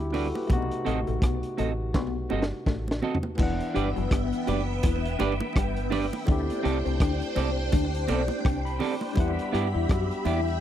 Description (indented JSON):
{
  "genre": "lovers rock reggae",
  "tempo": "83 BPM",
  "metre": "4/4",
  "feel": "swing 58% on 16ths",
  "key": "E minor",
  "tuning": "A4 = 440 Hz",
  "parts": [
    { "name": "barky tine electric piano", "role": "accompaniment", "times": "0.0-10.6 s", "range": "C3 to B5", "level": "-33 LUFS", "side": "left 2 dB", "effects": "slapback echo" },
    { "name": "deep dub fingered electric bass", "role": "bass", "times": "0.0-10.6 s", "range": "E1 to G2", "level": "-30 LUFS", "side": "equal", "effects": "none" },
    { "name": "semi-hollow electric guitar", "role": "stabs", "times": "0.1-10.4 s", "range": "B3 to D#5", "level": "-30 LUFS", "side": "right 6 dB", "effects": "wide subtle chorus" },
    { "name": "crunchy breakbeat drum kit", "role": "drums", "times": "0.1-10.6 s", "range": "crash cymbal, hi-hat, kick drum, rim click, snare drum, toms", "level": "-27 LUFS", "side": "equal", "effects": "none" },
    { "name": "bongos", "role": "percussion", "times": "0.1-10.4 s", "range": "none", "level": "-36 LUFS", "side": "right 4 dB", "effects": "slapback echo" },
    { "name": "electric guitar through a small old amp", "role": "riff", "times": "0.5-10.5 s", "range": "E3 to G4", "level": "-34 LUFS", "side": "left 10 dB", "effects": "slapback echo" },
    { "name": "phased string machine", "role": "second line", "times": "3.4-10.6 s", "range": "B3 to B5", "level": "-32 LUFS", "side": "equal", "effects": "ensemble chorus, phaser, slapback echo" }
  ],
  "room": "small room ambience",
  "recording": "dry, close 1970s-style studio recording",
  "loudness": "-24 LUFS",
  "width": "side -10 dB against mid",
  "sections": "0.0-3.4 A section; 3.4-10.6 B section",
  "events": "drum fill 1.9-3.4; tine electric piano fill 8.1-9.2",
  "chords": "0.5 B7b9; 3.4 Em7; 6.3 D7sus4; 9.2 Em7"
}